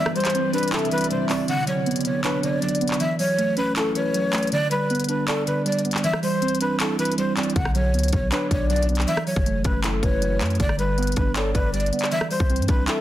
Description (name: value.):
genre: hip hop, trap.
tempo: 158 BPM.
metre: 4/4.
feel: half-time.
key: B minor.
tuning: A4 = 440 Hz.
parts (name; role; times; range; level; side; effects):
breathy mellow jazz flute; melody; 0.0-13.0 s; A4 to F#5; -26 LUFS; equal; digital delay.
muted felt-like synth keys; accompaniment; 0.0-13.0 s; D3 to D5; -25 LUFS; right 2 dB; chorus.
granular cloud pad; sustained chords; 0.0-1.5 s; C3 to D5; -32 LUFS; left 1 dB; built-in reverb.
trap drum kit; drums; 0.1-13.0 s; handclaps, hi-hat, kick drum, rim click; -26 LUFS; equal; none.
gliding portamento lead; second line; 0.7-4.5, 8.3-13.0 s; A4 to E5; -31 LUFS; left 4 dB; chorus, digital delay.
long sustained 808-style bass; bass; 7.6-12.9 s; F#1 to G2; -24 LUFS; equal; none.
room: light reverb, digital ambience.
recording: dense, heavily limited modern master.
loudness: -20 LUFS.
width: side -13 dB against mid.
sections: 0.0-1.5 A section; 1.5-13.0 B section.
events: break 0.0-1.5; kick muted 1.5-7.6.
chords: 0.0 Cadd9; 1.5 Bmadd9; 3.0 F#m7; 4.5 G; 6.0 Cadd9; 7.6 Bmadd9; 9.1 F#m7; 10.6 G; 12.1 Cadd9.